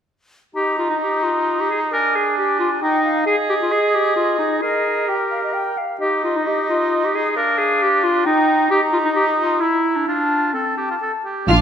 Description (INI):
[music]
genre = quick classical-period movement for symphony orchestra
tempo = 132 BPM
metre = 3/4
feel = rubato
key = Eb major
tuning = A4 = 439 Hz
[part]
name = concert flute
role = second line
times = 0.5-11.2 s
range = Eb5 to Bb5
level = -24 LUFS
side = left 2 dB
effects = none
[part]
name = bright clarinet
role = second line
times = 0.6-11.0 s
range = C4 to Bb4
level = -19 LUFS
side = equal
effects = none
[part]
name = warm oboe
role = second line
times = 0.6-11.5 s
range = D4 to Bb4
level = -22 LUFS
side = right 2 dB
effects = none
[part]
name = warm studio violin section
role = melody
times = 11.5-11.6 s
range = F5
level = -25 LUFS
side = left 2 dB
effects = none
[part]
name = rich studio violin section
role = second line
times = 11.5-11.6 s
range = F6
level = -19 LUFS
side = right 4 dB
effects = none
[part]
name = warm studio viola section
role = accompaniment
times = 11.5-11.6 s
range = D4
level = -20 LUFS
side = right 1 dB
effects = none
[part]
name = rich studio double bass section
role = bass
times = 11.5-11.6 s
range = Bb1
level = -15 LUFS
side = right 2 dB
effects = none
[part]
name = warm studio cello section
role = bass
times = 11.5-11.6 s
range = F4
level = -15 LUFS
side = left 2 dB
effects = none
[sound]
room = wet scoring stage reverb, RT60 1.8 s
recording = minimal, uncompressed stereo recording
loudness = -16 LUFS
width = side -8 dB against mid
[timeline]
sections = 0.6-11.5 A section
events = none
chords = 0.6 Eb5; 1.9 D(b5, no3); 2.8 Eb; 3.3 Ab5; 4.6 Eb; 5.5 Bb5; 6.0 N.C.; 7.4 Ddim; 8.3 Eb; 8.7 Ebadd9; 9.6 Dsus2; 10.1 F